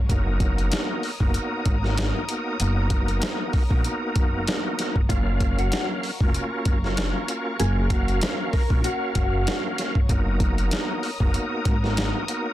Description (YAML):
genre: hip hop, boom-bap hip-hop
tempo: 96 BPM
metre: 4/4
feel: swing 56% on 16ths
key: unclear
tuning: A4 = 440 Hz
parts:
  - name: warm studio string section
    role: sustained chords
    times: 0.0-12.5 s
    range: A#4 to D#6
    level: -36 LUFS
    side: left 2 dB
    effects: high-pass filter, low-pass filter
  - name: upright bass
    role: bass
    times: 0.0-12.1 s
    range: E#1 to A#1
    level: -25 LUFS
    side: equal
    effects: none
  - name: bright tonewheel organ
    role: accompaniment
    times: 0.1-12.5 s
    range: F#3 to E#5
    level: -28 LUFS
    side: right 1 dB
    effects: chorus vibrato, fast rotary speaker, high-pass filter, low-pass filter
  - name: boom bap sampler-style drum kit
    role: drums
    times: 0.1-12.4 s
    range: hi-hat, kick drum, snare drum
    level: -24 LUFS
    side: equal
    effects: none
  - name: mellow electric guitar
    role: melody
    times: 5.1-9.6 s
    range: E#4 to A#4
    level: -30 LUFS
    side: left 1 dB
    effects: ensemble chorus, high-pass filter, low-pass filter, digital delay
room: little or no reverb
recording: dense, heavily limited modern master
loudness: -21 LUFS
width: side -14 dB against mid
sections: 0.0-12.5 A section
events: none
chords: 0.1 Bmaj7/F#; 5.1 F#maj7; 10.1 Bmaj7/F#